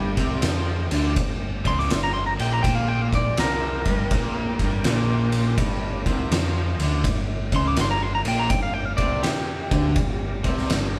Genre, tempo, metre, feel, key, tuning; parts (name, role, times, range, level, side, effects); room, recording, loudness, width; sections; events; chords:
blues rock power trio and southern rock; 82 BPM; 4/4; swing 66% on 8ths; G minor; A4 = 440 Hz
lightly driven lead guitar; melody; 0.0-11.0 s; G4 to D6; -30 LUFS; equal
overdriven tonewheel organ; sustained chords; 0.0-11.0 s; G4 to G5; -42 LUFS; equal
crunchy overdriven guitar; riff; 0.0-11.0 s; G2 to F3; -29 LUFS; equal
growling fingered electric bass; bass; 0.0-11.0 s; G1 to F2; -29 LUFS; equal; overdrive
oversized low-tuned drum kit; drums; 0.2-10.9 s; kick drum, ride cymbal, snare drum; -27 LUFS; equal
moderate large studio reverb, RT60 1.3 s; band playing live in one room; -23 LUFS; mono
0.0-11.0 A section
lead electric guitar solo 0.0-11.0
0.0 Gm